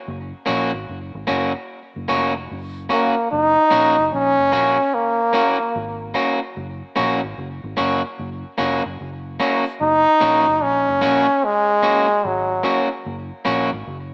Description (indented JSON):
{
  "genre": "roots reggae",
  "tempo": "74 BPM",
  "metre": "4/4",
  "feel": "swing 63% on 16ths",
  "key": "F# major",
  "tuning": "A4 = 440 Hz",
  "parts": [
    { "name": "vintage muted fingered electric bass", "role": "bass", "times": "0.1-14.1 s", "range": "E#1 to A#1", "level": "-34 LUFS", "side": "equal", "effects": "none" },
    { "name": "electric guitar at the edge of break-up", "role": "accompaniment", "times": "0.5-13.7 s", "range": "A#3 to F#4", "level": "-24 LUFS", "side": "equal", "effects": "tape echo" },
    { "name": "bright trombone", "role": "melody", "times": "2.9-12.9 s", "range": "F#3 to D#4", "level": "-18 LUFS", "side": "equal", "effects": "tape echo" }
  ],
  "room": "wet spring reverb, RT60 1.1 s, small room ambience",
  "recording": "small speaker sound",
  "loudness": "-19 LUFS",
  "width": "mono",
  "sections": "0.0-14.1 A section",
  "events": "none",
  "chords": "0.0 F#"
}